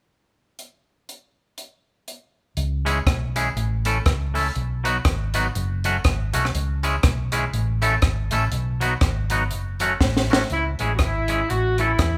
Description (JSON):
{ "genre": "ska", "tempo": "121 BPM", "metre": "4/4", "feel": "swing 59% on 8ths", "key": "C# minor", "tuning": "A4 = 439 Hz", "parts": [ { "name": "compact cocktail drum kit", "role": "drums", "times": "0.6-12.1 s", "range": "hi-hat, kick drum, rim click, snare drum", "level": "-25 LUFS", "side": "equal", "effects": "none" }, { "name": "hollow-body short-scale fingered electric bass", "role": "bass", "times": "2.6-12.2 s", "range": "F#1 to E2", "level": "-27 LUFS", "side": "equal", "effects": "none" }, { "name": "twangy electric guitar", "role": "accompaniment", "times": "2.9-11.9 s", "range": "F#3 to A4", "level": "-28 LUFS", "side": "equal", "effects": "none" }, { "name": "tambourine", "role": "percussion", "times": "2.9-10.4 s", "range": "none", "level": "-44 LUFS", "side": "equal", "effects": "none" }, { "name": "mellow horn section", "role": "melody", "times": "10.5-12.2 s", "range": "E4 to G#4", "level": "-26 LUFS", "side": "equal", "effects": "none" } ], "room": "light reverb", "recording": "band playing live in one room", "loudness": "-22 LUFS", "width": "mono", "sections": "0.6-2.6 A section; 2.6-10.5 B section; 10.5-12.2 C section", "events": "drum fill 10.0-10.5", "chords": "0.6 N.C.; 2.6 C#m; 3.6 A; 4.6 B; 5.5 F#m; 6.5 C#m; 7.5 A; 8.5 B; 9.5 F#m; 10.5 C#m; 11.5 A" }